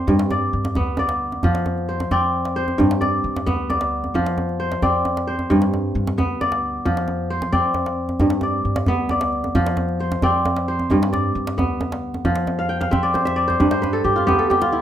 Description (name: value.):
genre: west african traditional, West African string and xylophone music.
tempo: 89 BPM (dotted quarters).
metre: 12/8.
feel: straight.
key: unclear.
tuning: A4 = 440 Hz.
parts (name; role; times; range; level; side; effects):
kora; arpeggios; 0.0-14.8 s; G2 to G5; -19 LUFS; equal; plate reverb.
upright bass; bass; 0.1-14.8 s; D2 to G2; -28 LUFS; equal; none.
djembe; percussion; 0.1-14.7 s; none; -24 LUFS; right 1 dB; none.
room: wet studio reverb, RT60 0.6 s.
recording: rough home demo mix.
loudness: -18 LUFS.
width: side -10 dB against mid.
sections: 0.0-14.8 A section.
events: kora fill 12.6-14.8.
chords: 0.1 G; 1.4 F5; 2.8 G; 4.1 F5; 5.5 G; 6.9 F5; 8.2 G; 9.6 F5; 10.9 G; 12.3 F5; 13.6 G.